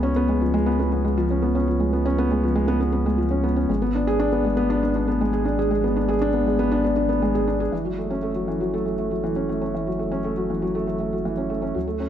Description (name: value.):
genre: piano and strings electronica.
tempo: 119 BPM.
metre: 4/4.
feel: straight.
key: F# minor.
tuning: A4 = 437 Hz.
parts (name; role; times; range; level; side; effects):
felt-muted upright piano; riff; 0.0-12.1 s; E3 to G#4; -21 LUFS; left 1 dB; digital delay.
round analog bass; bass; 0.0-12.1 s; F#1 to D2; -27 LUFS; right 1 dB; tube saturation.
room: moderate lush hall reverb, RT60 2.3 s.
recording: none.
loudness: -20 LUFS.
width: side -10 dB against mid.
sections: 0.0-7.7 A section; 7.7-12.1 B section.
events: none.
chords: 0.0 C#7; 3.7 G#dim; 7.7 F#m7.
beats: 0.16 0.66 1.17 | 1.67 2.18 2.68 3.19 | 3.69 4.19 4.70 5.20 | 5.71 6.21 6.71 7.22 | 7.72 8.23 8.73 9.23 | 9.74 10.24 10.75 11.25 | 11.76.